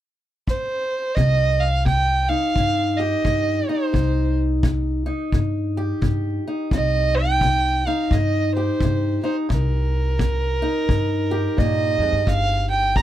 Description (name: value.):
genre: acoustic country blues, solo or duo.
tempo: 86 BPM.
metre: 4/4.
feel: swing 61% on 8ths.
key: C minor.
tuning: A4 = 440 Hz.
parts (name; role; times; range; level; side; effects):
dark fiddle; melody; 0.5-13.0 s; Bb4 to Bb5; -22 LUFS; right 3 dB; none.
kick drum; drums; 0.5-13.0 s; none; -24 LUFS; equal; none.
fingerpicked steel-string acoustic guitar; accompaniment; 1.2-13.0 s; G2 to G4; -24 LUFS; left 1 dB; none.
upright bass; bass; 1.2-13.0 s; G1 to G2; -22 LUFS; equal; none.
room: light reverb.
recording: none.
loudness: -18 LUFS.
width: side -12 dB against mid.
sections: 0.0-1.2 A section; 1.2-13.0 B section.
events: none.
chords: 0.0 N.C.; 1.2 Cm; 12.3 G7(no3).